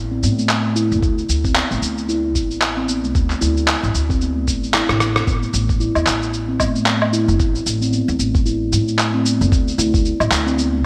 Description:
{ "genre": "organic downtempo", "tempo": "113 BPM", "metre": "4/4", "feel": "swing 58% on 16ths", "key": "unclear", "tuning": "A4 = 439 Hz", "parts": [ { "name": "upright bass", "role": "bass", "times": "0.0-10.8 s", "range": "G1 to A2", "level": "-23 LUFS", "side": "equal", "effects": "sidechain pumping" }, { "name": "steel tongue drum", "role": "arpeggios", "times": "0.1-10.8 s", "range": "A3 to E4", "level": "-24 LUFS", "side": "equal", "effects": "delay" }, { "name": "electronic shaker, handclaps, rim click and woodblock", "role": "drums", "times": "0.2-10.7 s", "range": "none", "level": "-23 LUFS", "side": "equal", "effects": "gated reverb" }, { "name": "electronic kick drum", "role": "drums", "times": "1.0-10.0 s", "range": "none", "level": "-22 LUFS", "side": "equal", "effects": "none" } ], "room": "moderate lush hall reverb, RT60 2.2 s", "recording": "bright 1980s-style digital production", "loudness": "-18 LUFS", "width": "mono", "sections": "0.0-5.3 A section; 5.3-10.9 B section", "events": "drum fill 4.7-5.3", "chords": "0.0 N.C.; 1.0 D5; 5.3 N.C.; 9.5 D5" }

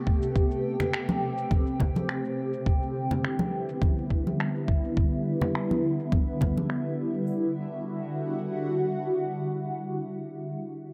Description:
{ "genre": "sunset chillout", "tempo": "104 BPM", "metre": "4/4", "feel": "swing 53% on 16ths", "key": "E minor", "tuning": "A4 = 440 Hz", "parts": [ { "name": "shimmering ambient pad", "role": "sustained chords", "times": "0.0-10.3 s", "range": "C3 to G4", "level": "-31 LUFS", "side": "equal", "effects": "chorus, built-in reverb, phaser" }, { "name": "electronic kick drum", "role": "drums", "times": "0.1-6.5 s", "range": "none", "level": "-27 LUFS", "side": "equal", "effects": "none" }, { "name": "electronic cabasa and finger snaps", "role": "drums", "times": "0.2-7.2 s", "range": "none", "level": "-38 LUFS", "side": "equal", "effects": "overdrive, low-pass filter on perc, low-pass filter on snare" }, { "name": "congas", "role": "percussion", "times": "0.8-6.7 s", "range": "none", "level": "-33 LUFS", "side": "equal", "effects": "none" } ], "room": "moderate plate reverb, RT60 2.9 s", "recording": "none", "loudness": "-28 LUFS", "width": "mono", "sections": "0.0-7.3 A section; 7.3-9.6 B section", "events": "filter sweep on drum 0.0-7.3", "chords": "0.0 Am9; 2.7 G6; 7.3 Em9" }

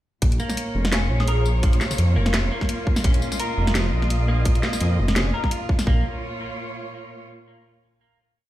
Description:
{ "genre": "half-time drum and bass", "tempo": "170 BPM", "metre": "4/4", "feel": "swing 56% on 16ths, half-time", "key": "Bb minor", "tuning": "A4 = 438 Hz", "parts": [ { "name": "warm studio cello section", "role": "sustained chords", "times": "0.2-7.2 s", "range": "Bb2 to Eb5", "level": "-30 LUFS", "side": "right 1 dB", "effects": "sidechain pumping" }, { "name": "dark detuned saw bass", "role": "bass", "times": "0.2-6.0 s", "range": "F1 to F2", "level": "-21 LUFS", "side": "equal", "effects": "none" }, { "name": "drum and bass drum kit", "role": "drums", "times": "0.2-5.9 s", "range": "hi-hat, snare drum, tambourine", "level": "-25 LUFS", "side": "equal", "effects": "overdrive, studio reverb" }, { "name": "electronic kick drum", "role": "drums", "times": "0.2-5.9 s", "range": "none", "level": "-20 LUFS", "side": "equal", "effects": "overdrive, studio reverb" }, { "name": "clean electric guitar", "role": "arpeggios", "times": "0.4-6.0 s", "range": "F3 to Bb4", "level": "-30 LUFS", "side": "equal", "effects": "lush chorus, ping-pong delay" }, { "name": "plucky unison lead", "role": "melody", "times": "1.2-1.5 s", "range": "Ab4", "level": "-32 LUFS", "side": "left 2 dB", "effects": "phaser, ping-pong delay" } ], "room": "digital ambience", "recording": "played on a big sound system in a bare room, stone room reverb", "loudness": "-19 LUFS", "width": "side -14 dB against mid", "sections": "0.2-5.9 drop; 5.9-7.3 final chord", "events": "drop 0.2-5.9", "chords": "0.2 Bbm" }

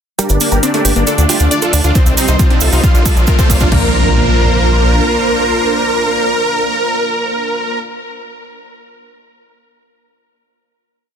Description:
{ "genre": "uplifting trance", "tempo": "136 BPM", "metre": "4/4", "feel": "straight", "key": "Bb major", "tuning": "A4 = 440 Hz", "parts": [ { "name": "dense compressed supersaw", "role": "melody", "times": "0.2-7.8 s", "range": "C4 to C5", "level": "-16 LUFS", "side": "right 1 dB", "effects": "sidechain pumping, low-pass filter, ping-pong delay" }, { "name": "filtered supersaw swell", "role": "sustained chords", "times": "0.2-7.8 s", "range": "G3 to D5", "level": "-19 LUFS", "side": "equal", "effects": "phaser, vintage 12-bit sampler grit, sidechain pumping" }, { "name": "analog pluck", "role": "arpeggios", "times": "0.2-3.9 s", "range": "G3 to D5", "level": "-22 LUFS", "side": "left 4 dB", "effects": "chorus, cassette tape, sidechain pumping, ping-pong delay" }, { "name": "big-room dance drum kit", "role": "drums", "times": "0.2-3.8 s", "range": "crash cymbal, hi-hat", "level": "-21 LUFS", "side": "right 3 dB", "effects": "sidechain pumping on hats, sidechain pumping on cymbals" }, { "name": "cabasa", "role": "percussion", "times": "0.2-3.7 s", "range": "none", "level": "-21 LUFS", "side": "right 7 dB", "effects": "none" }, { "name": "riser and impact", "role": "sound effects", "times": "2.2-7.8 s", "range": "none", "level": "-21 LUFS", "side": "equal", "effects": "none" }, { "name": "gritty driven synth bass", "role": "bass", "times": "0.3-5.0 s", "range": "G1 to D2", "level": "-13 LUFS", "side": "equal", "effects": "sidechain pumping" }, { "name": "electronic kick drum", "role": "drums", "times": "2.0-3.8 s", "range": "none", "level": "-12 LUFS", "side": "equal", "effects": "none" } ], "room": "light reverb", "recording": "dense, heavily limited modern master", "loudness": "-10 LUFS", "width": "side -8 dB against mid", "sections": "0.2-3.7 build; 3.7-7.2 final chord", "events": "build-up 0.2-3.7; filter sweep on supersaw synth 0.2-3.7; riser 2.2-3.7; drum fill 2.0-3.7", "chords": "0.2 Gm; 1.1 Dm; 2.0 Cm; 2.8 Bbadd9" }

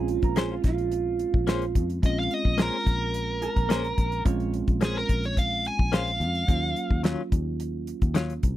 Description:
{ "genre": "straight-eighth soul blues", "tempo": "108 BPM", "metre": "4/4", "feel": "straight", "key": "Bb minor", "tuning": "A4 = 440 Hz", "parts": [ { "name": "electric guitar through a small old amp", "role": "second line", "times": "0.0-4.5 s", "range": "F4 to Db5", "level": "-31 LUFS", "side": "right 9 dB", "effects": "spring reverb" }, { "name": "bell-like tine electric piano", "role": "accompaniment", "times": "0.0-8.6 s", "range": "Gb3 to F4", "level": "-32 LUFS", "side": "right 4 dB", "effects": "phaser" }, { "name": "fingered electric bass", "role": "bass", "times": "0.0-8.6 s", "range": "Bb1 to F2", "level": "-30 LUFS", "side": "left 1 dB", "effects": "none" }, { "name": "damped 70s drum kit", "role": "drums", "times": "0.1-8.6 s", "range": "hi-hat, kick drum, snare drum", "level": "-24 LUFS", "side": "equal", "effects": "none" }, { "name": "direct-recorded clean electric guitar", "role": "stabs", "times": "0.4-8.3 s", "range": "Eb3 to C5", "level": "-29 LUFS", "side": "left 7 dB", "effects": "tremolo" }, { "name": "dark smooth lead guitar", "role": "melody", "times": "2.1-7.0 s", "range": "Ab4 to Ab5", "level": "-29 LUFS", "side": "equal", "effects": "overdrive" } ], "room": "little or no reverb", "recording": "dry, close 1970s-style studio recording", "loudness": "-23 LUFS", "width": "side -14 dB against mid", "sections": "0.0-8.6 A section", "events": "none", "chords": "0.0 Bbm9; 6.5 Ebm9" }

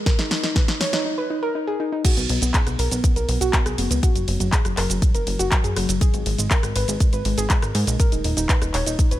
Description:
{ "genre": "progressive house", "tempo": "121 BPM", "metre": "4/4", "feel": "straight", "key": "unclear", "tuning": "A4 = 441 Hz", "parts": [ { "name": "soft round pluck", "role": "arpeggios", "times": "0.1-9.2 s", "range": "F#3 to C#5", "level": "-25 LUFS", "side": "equal", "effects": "chorus, cassette tape, sidechain pumping, tape echo" }, { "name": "electronic kick drum", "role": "drums", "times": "0.1-9.1 s", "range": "none", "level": "-19 LUFS", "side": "equal", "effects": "none" }, { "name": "house drum kit", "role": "drums", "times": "0.1-9.2 s", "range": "cabasa, crash cymbal, handclaps, hi-hat, ride cymbal, rim click, snare drum", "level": "-25 LUFS", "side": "equal", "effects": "none" }, { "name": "plucky analog bass", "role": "bass", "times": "2.2-9.2 s", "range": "D#1 to G#2", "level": "-24 LUFS", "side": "equal", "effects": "sidechain pumping" } ], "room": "digital ambience", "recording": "none", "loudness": "-18 LUFS", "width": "side -14 dB against mid", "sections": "0.0-2.0 A section; 2.0-9.2 B section", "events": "build-up 0.0-2.0; drum fill 0.0-1.1; break 1.1-2.0; drop 2.0-9.2", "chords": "0.0 N.C.; 2.0 B5; 4.0 F#add9; 6.0 G#madd9; 8.0 D#7(no3)" }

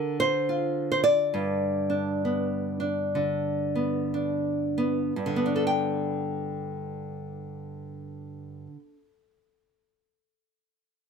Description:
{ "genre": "folk, solo fingerstyle acoustic guitar", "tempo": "56-73 BPM", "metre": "4/4", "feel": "swing 62% on 8ths", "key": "G major", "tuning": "A4 = 440 Hz", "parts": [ { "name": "nylon-string guitar", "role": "solo", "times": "0.0-9.0 s", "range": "G2 to G5", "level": "-26 LUFS", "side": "equal", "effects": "none" } ], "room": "little or no reverb", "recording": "close, detailed microphones", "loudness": "-25 LUFS", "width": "side -6 dB against mid", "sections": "0.0-5.2 A section; 5.2-9.5 B section", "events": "slowing down 0.0-5.2", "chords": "0.0 Bbadd9/D; 1.3 G" }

